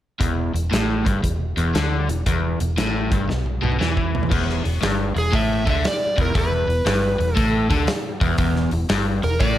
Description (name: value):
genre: blues rock power trio and southern rock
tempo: 118 BPM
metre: 4/4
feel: swing 66% on 8ths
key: unclear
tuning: A4 = 440 Hz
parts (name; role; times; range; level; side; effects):
- crunchy overdriven guitar; riff; 0.2-9.6 s; E2 to E3; -23 LUFS; left 1 dB; none
- vintage muted fingered electric bass; bass; 0.2-9.6 s; E1 to E2; -24 LUFS; equal; none
- huge arena drum kit; drums; 0.2-9.6 s; crash cymbal, hi-hat, kick drum, snare drum, toms; -24 LUFS; equal; none
- overdriven slide guitar; melody; 5.2-9.6 s; G#4 to E5; -24 LUFS; right 1 dB; none
room: moderate club reverb, RT60 0.8 s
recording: none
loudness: -18 LUFS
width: side -12 dB against mid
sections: 0.2-4.3 A section; 4.3-9.6 B section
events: drum fill 3.3-4.3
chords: 0.2 Emadd11; 3.3 Bsus4; 4.3 E5